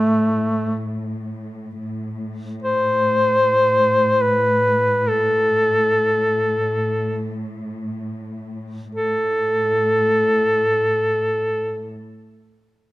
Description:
caucasian folk, Caucasian lament; free time; A minor; A4 = 440 Hz
warm duduk; melody; 0.0-11.9 s; A3 to C5; -17 LUFS; equal
warm symphonic string section; drone; 0.0-11.9 s; A2; -26 LUFS; equal
light reverb; close, detailed microphones; -17 LUFS; side -17 dB against mid
0.0-1.8 A section; 1.8-8.9 B section; 8.9-12.5 C section
slowing down 1.8-8.9

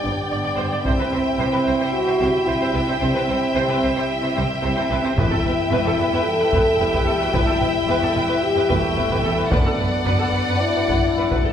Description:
cinematic, epic orchestral film score; 111 BPM; 4/4; straight; E minor; A4 = 444 Hz
clear symphonic violin section; melody; 0.0-11.5 s; F#5 to G5; -27 LUFS; left 2 dB
warm symphonic violin section; second line; 0.0-11.5 s; D5 to E5; -27 LUFS; left 1 dB
rich symphonic viola section; accompaniment; 0.0-11.5 s; A4 to D5; -27 LUFS; right 1 dB
clear trombone section; sustained chords; 0.0-11.5 s; F#3 to E4; -28 LUFS; right 2 dB
warm French horn section; sustained chords; 0.0-11.5 s; A3 to A4; -22 LUFS; left 2 dB
rich symphonic cello section; bass; 0.0-11.5 s; E2 to C3; -28 LUFS; right 2 dB
rich symphonic double bass section; bass; 0.0-11.5 s; E1 to C2; -27 LUFS; right 2 dB
taiko ensemble; drums; 0.9-1.9, 5.2-11.5 s; -24 LUFS; equal
wet recital hall reverb, RT60 1.4 s; recorded in a church or concert hall; -17 LUFS; side -8 dB against mid
0.0-11.5 A section
0.0 G; 0.9 C; 5.2 Em; 9.5 Bm/F#

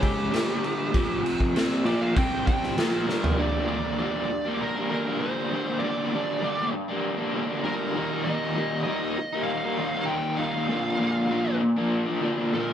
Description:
garage rock duo or trio; 98 BPM; 4/4; straight; G minor; A4 = 440 Hz
fuzz lead guitar; melody; 0.0-12.7 s; G4 to G5; -30 LUFS; right 2 dB; distortion
crunchy overdriven guitar; riff; 0.0-12.7 s; F2 to Eb4; -25 LUFS; equal; tremolo
raw garage drum kit; drums; 0.0-3.4 s; crash cymbal, kick drum, snare drum, toms; -26 LUFS; equal; vintage 12-bit sampler grit
wet studio reverb, RT60 0.8 s; band playing live in one room; -24 LUFS; side -9 dB against mid
0.0-3.4 A section; 3.4-12.7 B section
lead electric guitar solo 0.0-3.4; drum fill 3.1-3.4
0.3 G5; 0.9 F5; 1.6 Gm; 2.2 C5; 2.8 Gm; 8.0 Eb; 10.7 Bb

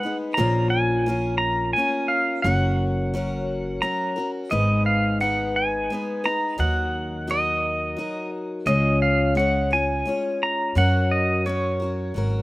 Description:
acoustic folk duo or small band; 87 BPM; 3/4; straight; G# dorian; A4 = 440 Hz
pedal steel guitar; melody; 0.0-12.4 s; C#5 to A#5; -24 LUFS; right 1 dB; slapback echo
picked steel-string acoustic guitar; accompaniment; 0.0-12.4 s; G#2 to C#5; -25 LUFS; left 2 dB
upright bass; bass; 0.4-12.4 s; F#1 to F#2; -24 LUFS; right 1 dB
little or no reverb; recorded outdoors, with no room sound; -20 LUFS; side -18 dB against mid
0.0-4.5 A section; 4.5-12.4 B section
0.4 A#m; 2.5 F#; 4.5 G#m; 6.6 D#m; 8.7 C#; 10.8 F#

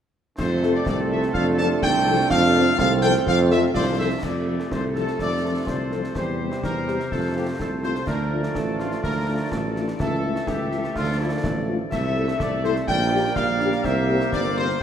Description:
military-style march for wind band; 125 BPM; 2/4; straight; F major; A4 = 440 Hz
warm trumpet section; melody; 0.4-14.8 s; E4 to A5; -26 LUFS; left 1 dB
bright woodwind section; second line; 0.4-14.8 s; F4 to E5; -30 LUFS; left 2 dB
clear euphonium; second line; 0.4-4.0 s; C4 to F4; -27 LUFS; right 8 dB
bright trombone section; sustained chords; 0.4-14.8 s; C3 to Bb3; -31 LUFS; right 3 dB
mellow tuba; bass; 0.4-14.8 s; G1 to F2; -24 LUFS; right 2 dB
concert snare drum, clash cymbals and concert bass drum; drums; 0.4-14.8 s; -32 LUFS; left 1 dB
dark French horn section; accompaniment; 0.6-14.7 s; F3 to A4; -29 LUFS; left 5 dB
moderate concert hall reverb, RT60 1.9 s; -20 LUFS; side -9 dB against mid
0.4-4.2 A section; 4.2-14.8 B section
0.4 F; 6.1 C/E; 7.1 F; 8.1 Dm; 10.0 A/C#; 11.0 Dm; 11.9 Am/C; 12.9 Gm/Bb; 13.8 C7

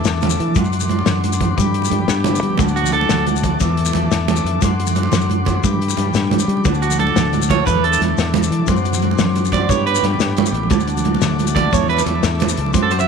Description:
highlife guitar band; 118 BPM (dotted quarters); 12/8; straight; D major; A4 = 441 Hz
picked steel-string acoustic guitar; accompaniment; 0.0-13.1 s; F#2 to A4; -25 LUFS; left 14 dB
mellow tonewheel organ; sustained chords; 0.0-13.1 s; E5 to D6; -24 LUFS; left 3 dB; slow rotary speaker
fingered electric bass; bass; 0.0-13.1 s; A1 to G3; -20 LUFS; left 1 dB
shekere; percussion; 0.0-13.1 s; -26 LUFS; left 8 dB
warm soul drum kit; drums; 0.1-13.0 s; hi-hat, kick drum, snare drum; -22 LUFS; left 5 dB
congas; percussion; 0.2-13.1 s; -21 LUFS; right 10 dB
electric guitar at the edge of break-up; arpeggios; 2.8-3.2, 6.8-13.1 s; F#4 to E5; -20 LUFS; right 10 dB; tape echo
light reverb, small room ambience; 1960s-style stereo with parts hard left and right, faint mains hum; -15 LUFS; side -6 dB against mid
0.0-13.1 A section
clean electric guitar solo 0.0-13.1
0.0 Asus4/E; 0.6 D7/F#; 1.6 G; 2.6 D; 3.6 Asus4/E; 4.6 D7/F#; 5.6 G; 6.7 D; 7.7 Asus4/E; 8.7 D7/F#; 9.7 G; 10.7 D; 11.7 Asus4/E

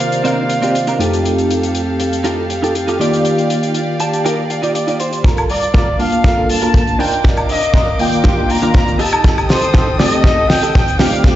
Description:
nu-disco, nu disco; 120 BPM; 4/4; straight; A4 = 441 Hz
clear trumpet section; melody; 0.0-1.0, 5.5-11.2 s; C5 to Bb5; -18 LUFS; equal; digital delay
tine electric piano; accompaniment; 0.0-11.4 s; F2 to A5; -18 LUFS; equal; ensemble chorus, sidechain pumping
warm chamber violin section; sustained chords; 0.0-11.4 s; G4 to Eb6; -23 LUFS; equal; sidechain pumping
direct-recorded clean electric guitar; riff; 0.0-11.4 s; C4 to A5; -20 LUFS; right 2 dB; analog chorus, low-pass filter, tape echo
damped 70s drum kit; drums; 0.1-11.4 s; hi-hat, snare drum, woodblock; -20 LUFS; left 1 dB
hollow-body short-scale fingered electric bass; bass; 5.2-11.3 s; F1 to C3; -35 LUFS; right 1 dB
kick drum; drums; 5.2-11.3 s; -13 LUFS; equal
moderate digital room reverb, RT60 1.1 s; played on a big sound system in a bare room, large studio reverb, nothing above 7.8 kHz; -12 LUFS; side -13 dB against mid
0.0-5.2 A section; 5.2-11.4 B section
clean electric guitar fill 3.7-5.2; build-up 5.2-11.4; drum fill 5.2-11.4; filter sweep on clean electric guitar 5.2-11.4
0.0 Cm11; 1.0 F9; 3.0 Ebmaj9; 5.2 Gm9; 7.0 Cm11; 9.0 F9

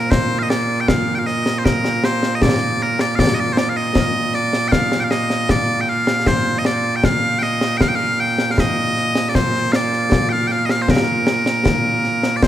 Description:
scottish traditional, Scottish pipe music; 78 BPM; 2/4; straight; Bb major; A4 = 440 Hz
loud bright bagpipes; melody; 0.0-12.5 s; Bb2 to G5; -18 LUFS; right 1 dB; tape echo
concert snare drum and concert bass drum; drums; 0.1-12.5 s; -19 LUFS; left 1 dB
light reverb; -15 LUFS; side -12 dB against mid
0.1-12.4 A section

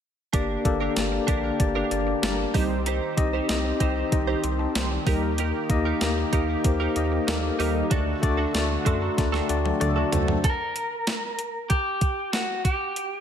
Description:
1980s-style pop; 95 BPM; 4/4; straight; G harmonic minor; A4 = 439 Hz
tine electric piano; accompaniment; 0.3-10.5 s; A3 to C6; -26 LUFS; left 4 dB; medium tremolo
brassy analog pad; sustained chords; 0.3-10.4 s; D3 to G4; -35 LUFS; right 4 dB; chorus
direct-recorded clean electric guitar; riff; 0.3-10.3 s; D4 to C5; -32 LUFS; right 8 dB; analog chorus, ping-pong delay
round analog bass; bass; 0.3-10.4 s; G1 to F#2; -28 LUFS; right 1 dB
clean 12-bit digital drum machine; drums; 0.3-13.1 s; hi-hat, kick drum, snare drum, toms; -26 LUFS; right 1 dB; overdrive, gated reverb
mellow synth brass; stabs; 2.2-10.4 s; F#3 to C5; -33 LUFS; right 4 dB; chorus, ping-pong delay
lightly driven lead guitar; melody; 10.4-13.2 s; F#4 to Bb4; -27 LUFS; equal
light reverb; -22 LUFS; side -8 dB against mid
0.3-10.4 A section; 10.4-13.2 B section
tine electric piano fill 8.5-10.4; drum fill 9.2-10.4
0.3 Gm; 2.5 Cm; 5.1 Eb; 7.9 D; 10.4 N.C.

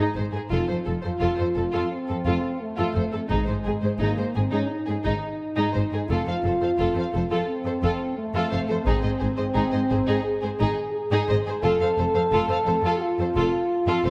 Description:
cinematic, epic orchestral film score; 86 BPM; 4/4; straight; A4 = 439 Hz
warm symphonic violin section; melody; 0.0-14.0 s; Eb4 to F5; -34 LUFS; equal
warm symphonic violin section; second line; 0.0-14.1 s; Eb4 to C5; -34 LUFS; equal
warm chamber viola section; accompaniment; 0.0-14.1 s; Ab4 to A4; -36 LUFS; equal
dark French horn section; sustained chords; 0.0-14.1 s; Ab3 to A4; -28 LUFS; equal
bright symphonic cello section; bass; 0.0-14.1 s; F2 to Ab2; -31 LUFS; equal
warm studio double bass section; bass; 0.2-14.1 s; F1 to Ab1; -32 LUFS; equal
taiko ensemble; drums; 3.3-4.7, 8.9-10.2 s; -32 LUFS; equal
moderate concert hall reverb, RT60 2.1 s; -24 LUFS; mono
0.0-14.1 A section
0.0 Ab; 0.5 F; 3.3 Ab; 6.1 F; 8.9 Ab; 11.6 F

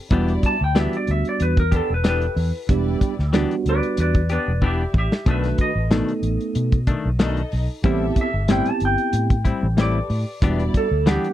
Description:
straight-eighth soul blues; 93 BPM; 4/4; swing 54% on 16ths; E minor; A4 = 440 Hz
bell-like tine electric piano; accompaniment; 0.1-11.3 s; D#3 to F#5; -24 LUFS; right 4 dB; phaser
muted studio string section; sustained chords; 0.1-11.1 s; G3 to E5; -34 LUFS; left 2 dB
semi-hollow electric guitar; stabs; 0.1-11.3 s; A2 to G4; -25 LUFS; left 5 dB
vintage muted fingered electric bass; bass; 0.1-11.2 s; E1 to B2; -22 LUFS; equal
warm soul drum kit; drums; 0.1-11.3 s; hi-hat, kick drum, snare drum; -20 LUFS; equal
clean lap steel guitar; melody; 0.5-11.3 s; G4 to A5; -25 LUFS; equal; slapback echo
little or no reverb; dry, close 1970s-style studio recording; -18 LUFS; side -13 dB against mid
0.0-11.3 A section
electric slide guitar solo 0.0-11.3; drum fill 4.6-5.3
0.1 Em7; 5.3 B7#9; 7.8 Am7; 10.4 Em7

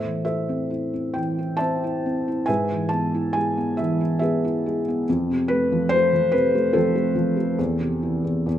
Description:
classical, lyrical solo piano; 66-74 BPM; 3/4; rubato; A minor; A4 = 437 Hz
felt-muted upright piano; solo; 0.0-8.6 s; E2 to A5; -20 LUFS; equal
moderate recital hall reverb, RT60 1.6 s; minimal, uncompressed stereo recording; -20 LUFS; side -11 dB against mid
0.0-8.6 A section
0.0 Am; 2.5 E/G#; 5.1 F; 7.6 Am/E

